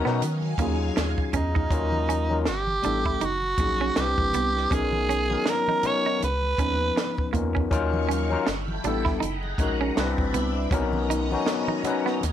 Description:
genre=R&B, neo-soul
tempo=80 BPM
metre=4/4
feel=swing 57% on 16ths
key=unclear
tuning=A4 = 442 Hz
part: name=overdriven tine electric piano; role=accompaniment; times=0.0-12.2 s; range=F3 to B4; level=-28 LUFS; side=left 6 dB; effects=none
part: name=phased string machine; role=sustained chords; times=0.0-1.7, 7.7-12.3 s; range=Gb3 to Db6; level=-33 LUFS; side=right 1 dB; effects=ensemble chorus, phaser
part: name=rubbery square bass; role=bass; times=0.0-12.3 s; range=Gb1 to Eb3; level=-28 LUFS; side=equal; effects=none
part: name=clean electric guitar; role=second line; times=0.1-12.2 s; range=Bb3 to E4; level=-30 LUFS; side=right 8 dB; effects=phaser
part: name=compact cocktail drum kit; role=drums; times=0.1-12.3 s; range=hi-hat, kick drum, snare drum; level=-28 LUFS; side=right 1 dB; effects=none
part: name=congas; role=percussion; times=0.2-12.3 s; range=none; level=-38 LUFS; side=right 2 dB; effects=none
part: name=growling tenor saxophone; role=melody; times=1.4-7.3 s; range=Eb4 to C#5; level=-25 LUFS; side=right 2 dB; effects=slapback echo
room=moderate studio reverb, RT60 0.6 s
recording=none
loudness=-22 LUFS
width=side -10 dB against mid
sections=0.0-1.7 A section; 1.7-12.3 B section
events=none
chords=0.2 Ebm11; 1.7 Ebm9; 2.5 G69; 3.2 Gb69; 4.0 Cmaj9; 4.7 Bmaj9; 6.2 Db13; 7.7 Ebm9; 8.5 G69; 9.2 Gb69; 10.0 Cmaj9; 10.7 Bmaj9

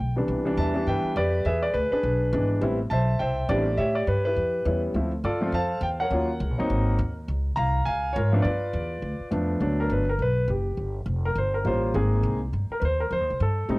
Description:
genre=jazz piano trio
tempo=206 BPM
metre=4/4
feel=swing 60% on 8ths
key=C major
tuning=A4 = 439 Hz
part: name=warm grand piano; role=melody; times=0.0-13.8 s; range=C2 to Bb5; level=-25 LUFS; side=equal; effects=cassette tape
part: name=upright bass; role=bass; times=0.0-13.8 s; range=F1 to A2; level=-26 LUFS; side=equal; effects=none
room=light reverb, studio reverb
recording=home recording on cassette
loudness=-23 LUFS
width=side -22 dB against mid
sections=0.3-9.6 A section; 9.6-13.8 B section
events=grand piano solo 9.6-13.8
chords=0.3 Cmaj7; 1.4 E7; 2.6 Am7; 3.8 A7; 4.9 Dm7; 6.1 Ebm7; 6.7 Ab7; 7.3 Db6; 8.4 G7; 9.6 Gmaj7; 10.8 Fadd9; 11.9 Abmaj9; 13.1 F9

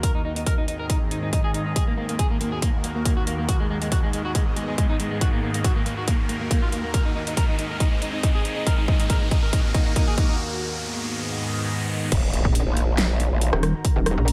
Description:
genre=heavy wobble dubstep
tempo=139 BPM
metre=4/4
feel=half-time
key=Eb minor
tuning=A4 = 440 Hz
part: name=electric guitar at the edge of break-up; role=melody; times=0.0-10.3 s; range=Ab3 to Bb4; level=-32 LUFS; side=equal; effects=subtle chorus, low-pass filter, delay
part: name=evolving wavetable pad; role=sustained chords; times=0.0-14.3 s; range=Eb2 to Bb5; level=-32 LUFS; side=equal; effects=phaser, built-in reverb, sidechain pumping
part: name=dubstep drum kit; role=drums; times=0.0-14.3 s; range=crash cymbal, hi-hat, rim click, snare drum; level=-31 LUFS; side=equal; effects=small room ambience
part: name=electronic kick drum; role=drums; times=0.0-13.9 s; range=none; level=-24 LUFS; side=equal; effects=small room ambience
part: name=riser and impact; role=sound effects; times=1.1-13.8 s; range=none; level=-36 LUFS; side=equal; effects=none
part: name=growl bass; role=bass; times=12.1-13.5 s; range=Eb1 to Bb1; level=-24 LUFS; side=equal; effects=chorus, overdrive
part: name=pulsing pluck wobble bass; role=bass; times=12.4-14.3 s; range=Eb1 to Bb1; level=-23 LUFS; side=equal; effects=chorus, overdrive
room=light reverb, digital ambience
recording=none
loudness=-23 LUFS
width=mono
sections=0.0-12.1 A section; 12.1-14.3 B section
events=build-up 0.0-12.1; riser 1.1-12.1; drum fill 5.2-10.4; break 10.4-12.1; drop 12.1-14.3; impact 12.1-13.8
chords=0.0 Ab; 1.8 Ebm; 3.5 Abm; 5.2 Ebm; 6.9 Ab; 8.7 Ebm; 10.4 Abm; 12.1 Ebm

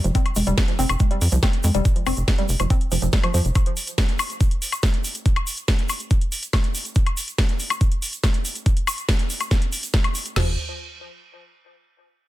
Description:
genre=psychedelic trance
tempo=141 BPM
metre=4/4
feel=straight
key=F minor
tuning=A4 = 439 Hz
part: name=woody wave-folded pluck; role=riff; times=0.0-3.4, 10.4-10.6 s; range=F3 to C4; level=-27 LUFS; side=moving between left 6 dB and right 3 dB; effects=chorus, auto-pan, sidechain pumping, dub echo
part: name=tight sequencer bass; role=bass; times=0.0-3.5, 10.4-10.6 s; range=F1 to F2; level=-21 LUFS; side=equal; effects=none
part: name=drum and bass drum kit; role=drums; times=0.0-10.3 s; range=hi-hat, snare drum, woodblock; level=-26 LUFS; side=left 1 dB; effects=soft clipping on snare
part: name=tube shaker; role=percussion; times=0.0-10.3 s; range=none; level=-33 LUFS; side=right 3 dB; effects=none
part: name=garage drum kit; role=drums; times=0.1-10.5 s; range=crash cymbal, kick drum, snare drum, toms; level=-20 LUFS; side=equal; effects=none
room=little or no reverb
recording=dense, heavily limited modern master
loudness=-19 LUFS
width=side -16 dB against mid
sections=0.0-10.4 A section; 10.4-12.1 B section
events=none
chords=0.0 F5; 10.4 N.C.

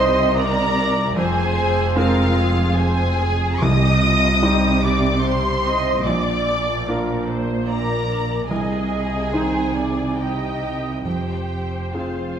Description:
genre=cinematic, emotional film score for orchestra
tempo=73 BPM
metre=3/4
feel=uneven beats, rubato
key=C minor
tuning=A4 = 441 Hz
part: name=muted studio violin section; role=melody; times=0.0-12.4 s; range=F5 to Eb6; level=-25 LUFS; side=equal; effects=none
part: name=muted studio violin section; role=second line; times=0.0-12.4 s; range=F4 to Eb5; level=-26 LUFS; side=left 2 dB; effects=none
part: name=clear concert grand piano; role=accompaniment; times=0.0-12.4 s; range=Bb1 to Ab4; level=-24 LUFS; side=equal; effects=none
part: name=muted studio viola section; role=accompaniment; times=0.0-12.4 s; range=F4 to Eb5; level=-26 LUFS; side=right 1 dB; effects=none
part: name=muted studio cello section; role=bass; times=0.0-12.4 s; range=F2 to C3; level=-26 LUFS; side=right 4 dB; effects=none
part: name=muted studio double bass section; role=bass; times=0.0-12.4 s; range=F1 to C2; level=-24 LUFS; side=right 1 dB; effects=none
part: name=timpani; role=percussion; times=3.6-4.8 s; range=C3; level=-23 LUFS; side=left 1 dB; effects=none
room=wet scoring stage reverb, RT60 1.6 s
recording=none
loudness=-17 LUFS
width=side -8 dB against mid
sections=0.0-12.4 A section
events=none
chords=0.0 Cm; 1.2 Fm; 3.6 Cm; 6.1 Bb; 8.5 Cm; 11.1 Fm

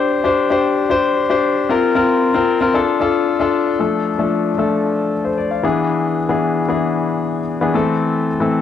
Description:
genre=pop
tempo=114 BPM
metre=4/4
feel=straight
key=D minor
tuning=A4 = 436 Hz
part: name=warm concert grand piano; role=solo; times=0.0-8.6 s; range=E3 to F5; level=-15 LUFS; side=left 4 dB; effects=tape echo
room=wet small room reverb, RT60 0.5 s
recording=home recording on cassette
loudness=-15 LUFS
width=side -9 dB against mid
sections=0.0-3.8 A section; 3.8-8.6 B section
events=none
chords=0.0 Csus2; 1.7 Bbsus2; 2.7 Dm; 5.6 E7; 7.7 Am

